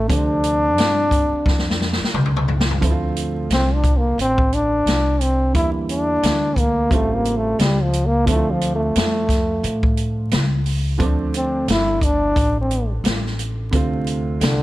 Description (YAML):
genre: hip hop, jazz-hop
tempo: 88 BPM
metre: 4/4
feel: swing 59% on 16ths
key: D minor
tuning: A4 = 442 Hz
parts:
  - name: mellow trombone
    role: melody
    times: 0.0-14.6 s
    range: D3 to E4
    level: -20 LUFS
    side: equal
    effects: none
  - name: dark upright piano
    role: accompaniment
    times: 0.0-14.6 s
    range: C3 to F4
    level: -28 LUFS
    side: right 4 dB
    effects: none
  - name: upright bass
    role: bass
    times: 0.0-14.6 s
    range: G1 to A2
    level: -22 LUFS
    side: equal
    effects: none
  - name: open jazz drum kit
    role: drums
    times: 0.1-14.6 s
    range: hi-hat, kick drum, snare drum, toms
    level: -21 LUFS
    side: equal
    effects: none
room: studio ambience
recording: vinyl crackle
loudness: -16 LUFS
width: side -16 dB against mid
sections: 0.0-2.8 A section; 2.8-13.7 B section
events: drum fill 1.5-2.8; trombone solo 2.8-13.7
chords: 0.0 Dm7; 5.5 Em7b5; 6.9 A7alt; 8.3 Dm7